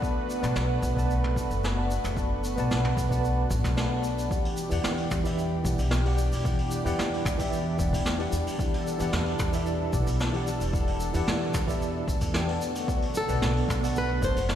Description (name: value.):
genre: sunset chillout.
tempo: 112 BPM.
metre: 4/4.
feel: straight.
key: E minor.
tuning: A4 = 440 Hz.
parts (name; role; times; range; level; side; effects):
tine electric piano; accompaniment; 0.0-14.4 s; E3 to A5; -31 LUFS; moving between left 5 dB and right 4 dB; overdrive, fast stereo tremolo, auto-pan, digital delay.
lush unison pad; sustained chords; 0.0-14.6 s; B2 to B4; -33 LUFS; equal; chorus.
electronic kick drum; drums; 0.0-14.3 s; none; -31 LUFS; equal; overdrive.
jazz brush drum kit; drums; 0.0-14.6 s; hi-hat, shaker, snare drum, toms; -34 LUFS; equal; none.
upright bass; bass; 0.4-14.6 s; E1 to E2; -29 LUFS; equal; none.
flamenco guitar; melody; 13.2-14.6 s; A4 to C5; -29 LUFS; equal; digital delay.
room: moderate lush hall reverb, RT60 2.7 s.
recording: played on a big sound system in a bare room, stone room reverb.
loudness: -24 LUFS.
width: side -10 dB against mid.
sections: 0.0-4.3 A section; 4.3-14.6 B section.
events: none.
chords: 0.0 Bm7; 4.3 Em7; 12.6 Bm7.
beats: | 0.03 0.56 1.10 1.63 | 2.17 2.71 3.24 3.78 | 4.31 4.85 5.38 5.92 | 6.46 6.99 7.53 8.06 | 8.60 9.13 9.67 10.21 | 10.74 11.28 11.81 12.35 | 12.88 13.42 13.96 14.49.